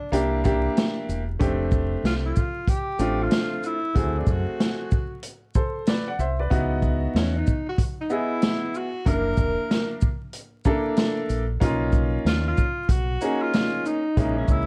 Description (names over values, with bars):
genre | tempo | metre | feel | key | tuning
hip hop, jazz-hop | 94 BPM | 4/4 | swing 62% on 16ths | unclear | A4 = 440 Hz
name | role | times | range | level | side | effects
breathy tenor saxophone | melody | 0.0-14.7 s | C#4 to A#4 | -31 LUFS | equal | none
bright upright piano | accompaniment | 0.1-14.7 s | G#3 to F#5 | -29 LUFS | equal | plate reverb
deep dub fingered electric bass | bass | 0.1-14.7 s | E1 to F#2 | -29 LUFS | equal | none
vintage drum kit | drums | 0.1-14.7 s | hi-hat, kick drum, shaker, snare drum | -26 LUFS | equal | none
room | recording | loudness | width
moderate small room reverb, RT60 0.6 s | dark, warm production, vinyl crackle | -24 LUFS | mono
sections
0.0-14.7 A section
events
none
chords
0.1 C9; 1.4 F6; 4.0 D7#11; 6.5 C#m11; 9.1 F#7#9b13 (rootless); 11.6 Bmaj9#11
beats
0.13 0.77 | 1.41 2.04 2.68 3.32 | 3.96 4.60 5.24 5.87 | 6.51 7.15 7.79 8.43 | 9.07 9.70 10.34 10.98 | 11.62 12.26 12.90 13.53 | 14.17